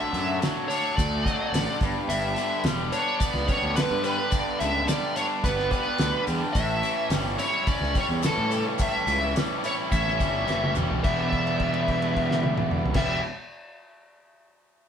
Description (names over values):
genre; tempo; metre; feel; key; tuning
psychedelic rock; 107 BPM; 4/4; straight; E dorian; A4 = 441 Hz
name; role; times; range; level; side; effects
fuzz lead guitar; melody; 0.0-13.2 s; A4 to E5; -28 LUFS; left 1 dB; wah, distortion
combo organ; sustained chords; 0.0-13.2 s; A3 to E5; -35 LUFS; right 2 dB; none
biting overdriven guitar; riff; 0.0-13.2 s; G2 to E4; -29 LUFS; equal; none
fuzz picked electric bass; bass; 0.1-13.2 s; E1 to A2; -29 LUFS; right 1 dB; overdrive
cloth-damped thuddy drum kit; drums; 0.1-13.1 s; crash cymbal, hi-hat, kick drum, snare drum, toms; -29 LUFS; equal; none
maracas; percussion; 0.1-11.3 s; none; -41 LUFS; left 6 dB; none
room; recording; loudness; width
moderate studio reverb, RT60 0.7 s; band playing live in one room; -22 LUFS; side -8 dB against mid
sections
0.0-11.0 A section; 11.0-13.3 B section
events
drum fill 10.5-11.0; held note 11.0-13.0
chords
0.0 D; 1.8 G; 6.6 A7; 11.0 Em7